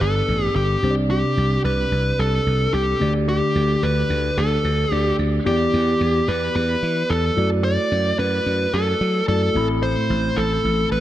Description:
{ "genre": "1980s-style pop", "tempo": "110 BPM", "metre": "4/4", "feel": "straight", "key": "unclear", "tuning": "A4 = 440 Hz", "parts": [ { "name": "dark smooth lead guitar", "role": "melody", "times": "0.0-11.0 s", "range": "G4 to D5", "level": "-21 LUFS", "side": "equal", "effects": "overdrive, digital delay" }, { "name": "mellow tine electric piano", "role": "accompaniment", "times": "0.0-11.0 s", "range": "G2 to B5", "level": "-23 LUFS", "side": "equal", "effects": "none" }, { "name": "slap bass", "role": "bass", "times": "0.0-11.0 s", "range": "G1 to F#3", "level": "-22 LUFS", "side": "equal", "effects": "none" } ], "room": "moderate plate reverb, RT60 2.7 s", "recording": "dark, warm production", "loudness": "-18 LUFS", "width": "side -13 dB against mid", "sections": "0.0-5.5 A section; 5.5-11.0 B section", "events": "none", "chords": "0.0 G; 0.8 Csus2; 3.0 Dsus4; 5.5 Em7; 7.4 Dadd9/F#; 9.6 Amadd9" }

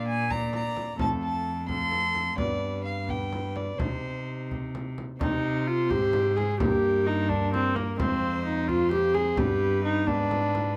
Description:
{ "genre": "classical, renaissance-style consort dance", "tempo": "86 BPM (dotted quarters)", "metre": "6/8", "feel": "straight", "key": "C minor", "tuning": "A4 = 438 Hz", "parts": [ { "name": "dark violin", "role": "melody", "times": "0.0-10.8 s", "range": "Bb4 to C6", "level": "-36 LUFS", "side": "equal", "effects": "none" }, { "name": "warm viola", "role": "second line", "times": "0.0-10.8 s", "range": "Bb3 to D5", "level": "-30 LUFS", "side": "equal", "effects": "none" }, { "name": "Celtic harp", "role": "accompaniment", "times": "0.0-10.8 s", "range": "F2 to F4", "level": "-38 LUFS", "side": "equal", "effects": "none" }, { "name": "rich cello", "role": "bass", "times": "0.0-10.8 s", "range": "F2 to C3", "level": "-33 LUFS", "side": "equal", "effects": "none" }, { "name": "frame drum", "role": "percussion", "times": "0.3-10.8 s", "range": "none", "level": "-36 LUFS", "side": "equal", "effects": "none" } ], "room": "light reverb", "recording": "close, detailed microphones", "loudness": "-27 LUFS", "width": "mono", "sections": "0.0-5.2 A section; 5.2-10.8 A section", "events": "none", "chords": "0.0 Bb; 1.0 F; 2.4 G; 3.8 Cm; 6.6 Gm; 8.0 Fm; 9.4 G" }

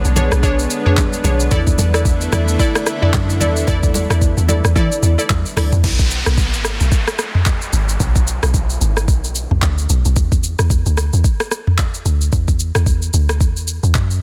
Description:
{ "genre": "amapiano", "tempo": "111 BPM", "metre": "4/4", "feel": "swing 58% on 16ths", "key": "B dorian", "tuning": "A4 = 437 Hz", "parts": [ { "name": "lush unison pad", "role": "sustained chords", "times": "0.0-5.8 s", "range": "D3 to E4", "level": "-27 LUFS", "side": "equal", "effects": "chorus" }, { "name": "deep log drum bass", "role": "bass", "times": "0.0-14.2 s", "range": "G#1 to E3", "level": "-19 LUFS", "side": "equal", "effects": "none" }, { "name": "smooth R&B drum kit", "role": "drums", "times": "0.0-14.2 s", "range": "crash cymbal, handclaps, hi-hat, kick drum, rim click, shaker, toms", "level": "-19 LUFS", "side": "equal", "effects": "none" }, { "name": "glassy wavetable pluck", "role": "stabs", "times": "0.2-5.7 s", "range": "D4 to D5", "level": "-24 LUFS", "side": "equal", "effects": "chorus, digital delay" }, { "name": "congas", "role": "percussion", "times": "0.2-5.7 s", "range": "none", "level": "-28 LUFS", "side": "equal", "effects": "none" }, { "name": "downlifter", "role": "sound effects", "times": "5.8-10.2 s", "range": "none", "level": "-28 LUFS", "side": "equal", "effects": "none" } ], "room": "little or no reverb", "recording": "dense, heavily limited modern master", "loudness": "-16 LUFS", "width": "mono", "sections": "0.0-5.8 A section; 5.8-14.2 B section", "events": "drop 0.0-5.8", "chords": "0.0 Bm69; 1.5 E7sus4; 5.8 B5; 10.2 Dsus2" }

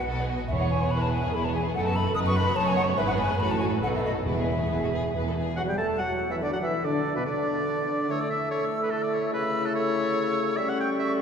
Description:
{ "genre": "quick classical-period movement for symphony orchestra", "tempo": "144 BPM", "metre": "3/4", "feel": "rubato", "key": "E major", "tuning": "A4 = 440 Hz", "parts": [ { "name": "rich chamber violin section", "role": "melody", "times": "0.0-5.6 s", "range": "G#4 to D#5", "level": "-38 LUFS", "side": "left 4 dB", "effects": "none" }, { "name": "bright silver concert flute", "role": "second line", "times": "0.0-11.2 s", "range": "B4 to E6", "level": "-31 LUFS", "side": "left 2 dB", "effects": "none" }, { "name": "rich chamber violin section", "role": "second line", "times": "0.0-5.6 s", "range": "A3 to B4", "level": "-36 LUFS", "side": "left 2 dB", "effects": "none" }, { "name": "warm chamber viola section", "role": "accompaniment", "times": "0.0-5.3 s", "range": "F#4 to C#5", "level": "-31 LUFS", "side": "right 2 dB", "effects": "none" }, { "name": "rich chamber double bass section", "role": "bass", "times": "0.1-5.5 s", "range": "E1 to B1", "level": "-33 LUFS", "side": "right 1 dB", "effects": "none" }, { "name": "warm chamber cello section", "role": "bass", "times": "0.1-5.5 s", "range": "E2 to B2", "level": "-31 LUFS", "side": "right 2 dB", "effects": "none" }, { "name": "timpani", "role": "percussion", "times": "0.5-1.1, 4.3-4.9 s", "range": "E2", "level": "-34 LUFS", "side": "left 1 dB", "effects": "none" }, { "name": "clear oboe", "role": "second line", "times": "5.6-11.1 s", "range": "A4 to A5", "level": "-30 LUFS", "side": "equal", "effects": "none" }, { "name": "warm clarinet", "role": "second line", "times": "5.6-11.2 s", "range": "B3 to A4", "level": "-33 LUFS", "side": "left 2 dB", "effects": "none" }, { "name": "mellow bassoon", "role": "accompaniment", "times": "5.6-11.2 s", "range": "B2 to A3", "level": "-30 LUFS", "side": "right 2 dB", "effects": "none" }, { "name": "mellow French horn section", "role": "sustained chords", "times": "5.6-11.2 s", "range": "B2 to E4", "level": "-31 LUFS", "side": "left 4 dB", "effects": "none" } ], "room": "wet cathedral reverb, RT60 5.3 s", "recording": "recorded in a church or concert hall", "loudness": "-24 LUFS", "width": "side -7 dB against mid", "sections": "0.0-5.6 A section; 5.6-11.2 B section", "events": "none", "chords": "0.1 B; 0.5 E; 1.7 B7/F#; 3.0 E/G#; 3.4 F#m/A; 3.8 B7; 4.3 E; 5.6 N.C.; 8.1 A5; 9.3 A/C#; 10.6 A7/G" }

